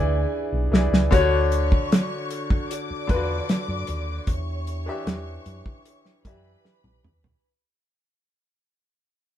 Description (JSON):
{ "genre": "lush 1970s-style soul", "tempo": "76 BPM", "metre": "4/4", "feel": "straight", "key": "unclear", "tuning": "A4 = 439 Hz", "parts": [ { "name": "bright concert grand piano", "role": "accompaniment", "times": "0.0-7.4 s", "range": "D3 to E5", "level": "-26 LUFS", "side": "left 2 dB", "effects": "none" }, { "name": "mellow French horn section", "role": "sustained chords", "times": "0.0-7.4 s", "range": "D3 to G#4", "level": "-36 LUFS", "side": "equal", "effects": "none" }, { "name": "hollow-body short-scale fingered electric bass", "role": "bass", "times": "0.0-7.3 s", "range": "B1 to F#2", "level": "-25 LUFS", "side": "equal", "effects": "none" }, { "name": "damped 70s drum kit", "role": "drums", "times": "0.7-7.4 s", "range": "hi-hat, kick drum, snare drum, toms", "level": "-21 LUFS", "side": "equal", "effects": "none" }, { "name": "warm studio string section", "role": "second line", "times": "1.1-7.4 s", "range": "B4 to D6", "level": "-35 LUFS", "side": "left 3 dB", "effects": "none" } ], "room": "moderate small room reverb, RT60 0.5 s", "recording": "band playing live in one room", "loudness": "-21 LUFS", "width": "side -11 dB against mid", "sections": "0.0-1.1 A section; 1.1-7.4 B section", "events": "drum fill 0.3-1.1, 6.6-7.4; fade-out 1.1-7.4", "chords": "0.0 E7; 1.1 Dmaj7; 4.3 Em7" }